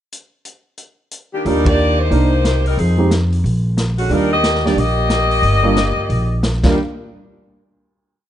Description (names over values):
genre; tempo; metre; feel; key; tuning
jazz, big band swing; 180 BPM; 4/4; swing 62% on 8ths; Eb major; A4 = 440 Hz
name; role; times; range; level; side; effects
vintage drum kit; drums; 0.1-6.7 s; crash cymbal, hi-hat, kick drum, ride cymbal, snare drum; -22 LUFS; equal; none
warm saxophone section; melody; 1.3-6.8 s; D3 to Eb5; -18 LUFS; left 2 dB; none
dark grand piano; accompaniment; 1.5-6.8 s; G3 to Bb4; -19 LUFS; right 3 dB; none
upright bass; bass; 1.5-6.8 s; G1 to F2; -17 LUFS; equal; none
room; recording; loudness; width
light reverb; dark, warm production, nothing above 10.4 kHz; -13 LUFS; side -11 dB against mid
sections
0.1-1.4 pickup bar; 1.4-6.8 A section; 6.8-8.1 final hit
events
band accent 1.6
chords
0.1 N.C.; 1.4 Ebmaj7; 2.1 Cm7; 2.8 Fm7; 3.4 N.C.; 4.1 Ebmaj7; 6.8 N.C.